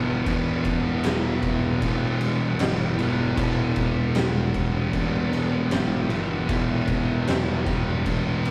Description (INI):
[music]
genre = stoner and doom metal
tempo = 77 BPM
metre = 4/4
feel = straight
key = E minor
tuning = A4 = 438 Hz
[part]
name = thick fuzz guitar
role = riff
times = 0.0-8.5 s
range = E2 to E3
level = -29 LUFS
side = equal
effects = distortion
[part]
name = thick fuzz guitar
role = riff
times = 0.0-8.5 s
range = E2 to E3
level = -29 LUFS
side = equal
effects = distortion
[part]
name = fuzz picked electric bass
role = bass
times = 0.0-8.5 s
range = E1 to C2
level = -34 LUFS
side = equal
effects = none
[part]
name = oversized low-tuned drum kit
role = drums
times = 0.3-8.5 s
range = crash cymbal, kick drum, snare drum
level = -29 LUFS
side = equal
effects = none
[sound]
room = light reverb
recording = rough rehearsal-room recording, tube saturation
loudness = -24 LUFS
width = mono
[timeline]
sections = 0.0-8.5 A section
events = none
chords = 0.0 Em